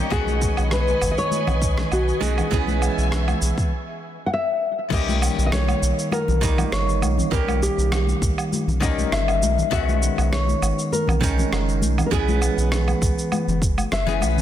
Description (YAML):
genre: sunset chillout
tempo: 100 BPM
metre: 4/4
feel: swing 53% on 16ths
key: unclear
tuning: A4 = 443 Hz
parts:
  - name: archtop guitar, miked and amplified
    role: accompaniment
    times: 0.0-14.4 s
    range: D#3 to G#4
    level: -26 LUFS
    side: moving between left 9 dB and right 9 dB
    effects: auto-pan, tape echo
  - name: soft string machine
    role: sustained chords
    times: 0.0-3.7 s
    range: B4 to C#6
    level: -30 LUFS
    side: equal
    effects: ensemble chorus
  - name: round analog bass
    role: bass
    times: 0.0-14.4 s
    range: F#1 to B1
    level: -22 LUFS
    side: equal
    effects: none
  - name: nylon-string guitar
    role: melody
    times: 0.1-14.4 s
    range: F#4 to F#5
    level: -26 LUFS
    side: left 2 dB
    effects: tape echo
  - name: dusty soul sampler-style drum kit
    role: drums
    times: 0.1-14.4 s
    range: cabasa, crash cymbal, rim click, woodblock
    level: -29 LUFS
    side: right 2 dB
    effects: overdrive
  - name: electronic kick drum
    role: drums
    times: 0.1-13.7 s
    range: none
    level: -25 LUFS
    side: equal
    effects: none
  - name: congas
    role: percussion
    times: 0.3-14.4 s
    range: none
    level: -30 LUFS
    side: left 5 dB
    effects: none
room: light reverb, digital ambience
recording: dense, heavily limited modern master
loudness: -19 LUFS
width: side -11 dB against mid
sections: 0.0-4.9 A section; 4.9-14.4 B section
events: break 3.7-4.9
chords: 0.1 B69; 2.5 C#m7/B; 4.9 D#7; 9.7 B69; 12.1 C#m7/B